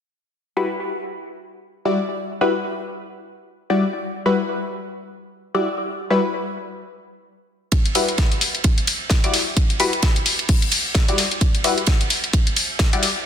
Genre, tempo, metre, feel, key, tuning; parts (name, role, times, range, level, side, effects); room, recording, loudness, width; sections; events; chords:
bass house; 130 BPM; 4/4; swing 58% on 16ths; E minor; A4 = 441 Hz
band-passed chord stab; stabs; 0.6-13.1 s; G3 to D5; -22 LUFS; left 2 dB; phaser, sidechain pumping, tape echo
electronic hi-hat; drums; 7.7-13.1 s; -22 LUFS; left 2 dB; studio reverb
electronic kick drum; drums; 7.7-12.9 s; -18 LUFS; equal; studio reverb
modern studio drum kit; drums; 7.7-13.2 s; hi-hat, ride cymbal, snare drum; -25 LUFS; right 2 dB; sidechain pumping on cymbals, high-pass filter on cymbals, studio reverb, sidechain pumping on hats, high-pass filter on hats, high-pass filter on snare, high-pass filter on room
light reverb, small room ambience; dense, heavily limited modern master; -18 LUFS; side -8 dB against mid
0.3-13.3 A section
0.3 Emadd9